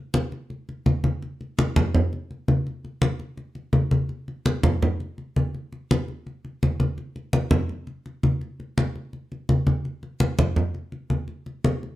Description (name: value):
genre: latin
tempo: 167 BPM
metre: 4/4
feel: straight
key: none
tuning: none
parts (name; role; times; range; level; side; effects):
- congas; percussion; 0.1-12.0 s; none; -22 LUFS; equal; none
room: moderate studio reverb, RT60 0.6 s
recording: dark, warm production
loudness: -23 LUFS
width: side -15 dB against mid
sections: 0.0-9.8 A section; 9.8-12.0 B section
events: none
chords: none